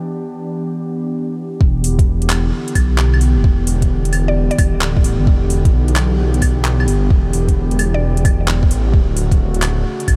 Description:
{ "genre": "future garage", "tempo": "131 BPM", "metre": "4/4", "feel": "swing 66% on 16ths", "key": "E dorian", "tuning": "A4 = 441 Hz", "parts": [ { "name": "warbly tape-like pad", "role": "sustained chords", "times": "0.0-10.2 s", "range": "C#3 to G4", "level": "-24 LUFS", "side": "equal", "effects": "chorus, built-in reverb, sidechain pumping" }, { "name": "wind-like tuned noise texture", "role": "texture", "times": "0.0-1.6 s", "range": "D4 to D5", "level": "-48 LUFS", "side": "equal", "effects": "none" }, { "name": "swelling detuned saw bass", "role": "bass", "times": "1.6-10.2 s", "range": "D1 to B1", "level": "-18 LUFS", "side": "equal", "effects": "sidechain pumping" }, { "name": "electronic kick drum", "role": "drums", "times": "1.6-10.2 s", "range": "none", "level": "-16 LUFS", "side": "equal", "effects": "overdrive, small room ambience" }, { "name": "garage drum kit", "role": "drums", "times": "1.8-10.2 s", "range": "claves, handclaps, hi-hat", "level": "-26 LUFS", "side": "equal", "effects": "small room ambience" }, { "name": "mallet-like synth pluck", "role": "melody", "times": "4.3-5.1, 7.9-8.1 s", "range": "D5", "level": "-30 LUFS", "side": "equal", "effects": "chorus, analog delay" } ], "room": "light reverb", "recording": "none", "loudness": "-16 LUFS", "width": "mono", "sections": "0.0-1.6 A section; 1.6-10.2 B section", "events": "none", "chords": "0.0 Em7; 8.9 Dmaj7", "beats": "0.23 0.69 1.15 | 1.60 2.06 2.52 2.98 | 3.44 3.90 4.35 4.81 | 5.27 5.73 6.18 6.64 | 7.10 7.56 8.02 8.48 | 8.93 9.39 9.85" }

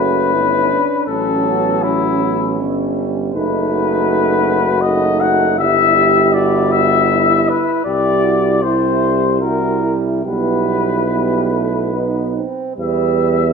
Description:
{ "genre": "classical, hymn-like piece for brass band", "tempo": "68-82 BPM", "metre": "3/4", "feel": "rubato", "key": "E minor from 3.3 s", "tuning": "A4 = 440 Hz", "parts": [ { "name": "mellow cornet", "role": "melody", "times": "0.0-13.5 s", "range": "E4 to F#5", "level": "-17 LUFS", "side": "left 8 dB", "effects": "none" }, { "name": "mellow French horn section", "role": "second line", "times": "0.0-13.5 s", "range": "C#4 to B4", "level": "-21 LUFS", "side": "right 10 dB", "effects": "none" }, { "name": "clear trombone", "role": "accompaniment", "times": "0.0-13.5 s", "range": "F#3 to C4", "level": "-22 LUFS", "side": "right 5 dB", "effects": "none" }, { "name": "warm euphonium", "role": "accompaniment", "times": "0.0-12.3 s", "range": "B3 to G4", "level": "-22 LUFS", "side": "left 2 dB", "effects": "none" }, { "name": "warm tuba", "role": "bass", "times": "0.0-13.5 s", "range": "F#1 to E2", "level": "-20 LUFS", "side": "right 1 dB", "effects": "none" } ], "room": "moderate scoring stage reverb, RT60 1.9 s", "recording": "none", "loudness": "-13 LUFS", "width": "side -5 dB against mid", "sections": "0.0-12.8 A section", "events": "none", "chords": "0.0 F#m; 1.1 F#m/A; 3.3 B7/F#; 5.6 Em/G; 7.9 C; 10.3 Em/B; 12.0 B; 12.8 Em", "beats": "0.34 | 1.08 1.84 2.60 | 3.35 4.08 4.83 | 5.59 6.34 7.10 | 7.87 8.63 9.42 | 10.26 11.13 11.96 | 12.78" }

